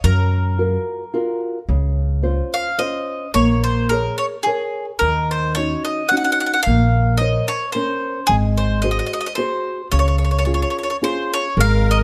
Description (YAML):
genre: italian folk, Italian serenade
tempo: 109 BPM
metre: 3/4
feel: swing 55% on 8ths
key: Db major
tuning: A4 = 440 Hz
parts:
  - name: bowl-back mandolin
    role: melody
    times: 0.0-12.0 s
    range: Ab4 to Gb5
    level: -23 LUFS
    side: equal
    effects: none
  - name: nylon-string guitar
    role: accompaniment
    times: 0.0-12.0 s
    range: Db3 to Db5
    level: -25 LUFS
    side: equal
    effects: none
  - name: upright bass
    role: bass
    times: 0.0-12.0 s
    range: Ab1 to Gb2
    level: -20 LUFS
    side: equal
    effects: none
  - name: musette accordion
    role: second line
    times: 11.6-12.0 s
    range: Bb4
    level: -24 LUFS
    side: equal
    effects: none
room: light reverb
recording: close, detailed microphones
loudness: -19 LUFS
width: mono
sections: 0.0-11.6 A section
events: none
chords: 0.0 Gbmaj7; 1.7 Dbmaj7; 3.3 Bbm7; 5.0 Ebm7; 6.7 Bbmadd9; 8.3 Ab7; 9.9 Db